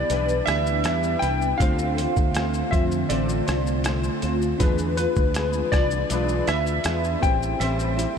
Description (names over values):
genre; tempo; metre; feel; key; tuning
indie pop, bedroom pop; 80 BPM; 4/4; straight; D dorian; A4 = 445 Hz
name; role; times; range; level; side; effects
warm analog keys; melody; 0.0-8.2 s; B4 to G5; -26 LUFS; equal; wide subtle chorus, ping-pong delay
flamenco guitar; accompaniment; 0.0-8.2 s; A2 to C5; -28 LUFS; left 5 dB; analog chorus, warbly pitch drift
mellow tine electric piano; accompaniment; 0.0-8.2 s; B3 to D5; -35 LUFS; right 3 dB; medium stereo tremolo, cassette tape
ethereal airy pad; sustained chords; 0.0-8.2 s; D3 to G#4; -30 LUFS; right 2 dB; ensemble chorus, built-in reverb
fingered electric bass; bass; 0.0-8.1 s; A1 to F2; -26 LUFS; equal; none
boom bap sampler-style drum kit; drums; 0.1-8.2 s; hi-hat, kick drum, rim click, shaker; -27 LUFS; equal; none
room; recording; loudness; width
moderate huge ambient reverb, RT60 5.0 s; dreamy mix soaked in reverb; -20 LUFS; side -7 dB against mid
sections
0.0-8.2 A section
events
none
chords
0.0 Em7; 1.6 Dm7; 4.6 E7b9; 7.2 Am7